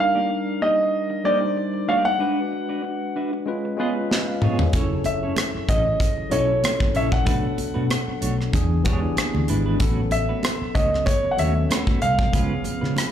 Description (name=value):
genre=lush 1970s-style soul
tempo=95 BPM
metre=4/4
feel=swing 54% on 16ths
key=unclear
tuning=A4 = 440 Hz
part: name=clear grand piano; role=melody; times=0.0-13.1 s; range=C#5 to F#5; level=-24 LUFS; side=equal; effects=slapback echo
part: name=tine electric piano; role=accompaniment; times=0.0-13.1 s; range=E3 to G#5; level=-27 LUFS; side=left 3 dB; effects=auto-pan, slapback echo
part: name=clean electric guitar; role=riff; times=0.0-13.0 s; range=G#3 to E5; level=-30 LUFS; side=right 6 dB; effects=tremolo, slapback echo
part: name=modern studio drum kit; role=drums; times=4.1-13.1 s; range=hi-hat, kick drum, rim click, snare drum, toms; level=-23 LUFS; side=equal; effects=none
part: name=vintage muted fingered electric bass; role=bass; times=4.7-12.9 s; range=F#1 to C#3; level=-24 LUFS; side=equal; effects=none
part: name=congas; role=percussion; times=4.7-13.1 s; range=none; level=-34 LUFS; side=right 7 dB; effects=slapback echo
room=studio reverb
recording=live gig heard through the venue's PA, club reverb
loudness=-20 LUFS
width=side -9 dB against mid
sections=0.0-13.1 A section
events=drum fill 4.1-4.7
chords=0.0 D#maj7; 2.2 G#m7b5; 3.5 C#7; 4.7 F#m7; 7.3 Bm7; 8.5 E7; 9.8 A69; 12.3 C#7